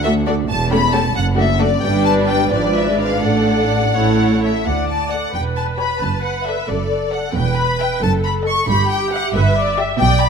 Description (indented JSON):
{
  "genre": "quick classical-period movement for string orchestra",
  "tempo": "82-93 BPM (dotted quarters)",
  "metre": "6/8",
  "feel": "rubato",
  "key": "D major",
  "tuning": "A4 = 440 Hz",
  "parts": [
    { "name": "rich studio violin section", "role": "melody", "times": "0.0-10.3 s", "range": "D5 to C#6", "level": "-20 LUFS", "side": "left 4 dB", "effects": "none" },
    { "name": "rich studio violin section", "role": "second line", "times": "0.0-9.9 s", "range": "F#4 to E5", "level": "-24 LUFS", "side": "left 1 dB", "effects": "none" },
    { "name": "rich studio cello section", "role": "bass", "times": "0.0-10.3 s", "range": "D2 to B2", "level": "-23 LUFS", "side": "right 2 dB", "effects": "none" },
    { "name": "rich studio double bass section", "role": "bass", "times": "0.0-10.3 s", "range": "E1 to D2", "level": "-21 LUFS", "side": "right 4 dB", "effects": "none" },
    { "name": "rich symphonic viola section", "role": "accompaniment", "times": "0.1-10.3 s", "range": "E#3 to E5", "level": "-21 LUFS", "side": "right 1 dB", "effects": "none" }
  ],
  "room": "moderate concert hall reverb, RT60 2.0 s",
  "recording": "none",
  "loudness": "-15 LUFS",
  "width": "side -6 dB against mid",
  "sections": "0.0-4.7 A section; 4.7-10.3 B section",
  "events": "none",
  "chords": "0.5 A7/E; 1.1 D/F#; 1.8 G; 2.5 G#dim7; 3.2 D/A; 3.9 A; 4.7 D5; 5.3 C#dim/E; 6.0 D/F#; 7.4 E5; 8.0 D#dim/F#; 8.7 Em/G"
}